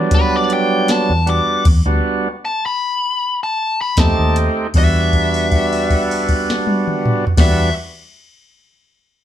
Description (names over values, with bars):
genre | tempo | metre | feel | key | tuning
straight-eighth soul blues | 78 BPM | 4/4 | swing 54% on 16ths | E minor | A4 = 439 Hz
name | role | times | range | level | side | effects
overdriven tonewheel organ | accompaniment | 0.0-7.7 s | F#3 to G4 | -18 LUFS | right 2 dB | slow rotary speaker
vintage muted fingered electric bass | bass | 0.0-7.7 s | D2 to F2 | -18 LUFS | equal | none
biting lead guitar | melody | 0.1-7.7 s | B4 to D6 | -20 LUFS | left 3 dB | overdrive
soft vintage rhythm box | drums | 0.1-7.6 s | crash cymbal, hi-hat, kick drum, snare drum, toms | -17 LUFS | left 1 dB | none
room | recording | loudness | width
moderate studio reverb, RT60 0.7 s | band playing live in one room | -14 LUFS | side -11 dB against mid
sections
0.0-4.7 A section; 4.7-7.8 B section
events
stop 1.7-4.0; held note 4.7-7.4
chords
0.0 Em7 (rootless); 4.0 F7; 4.7 Em7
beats
0.12 0.89 | 1.66 2.43 3.20 3.97 | 4.75 5.51 6.29 7.06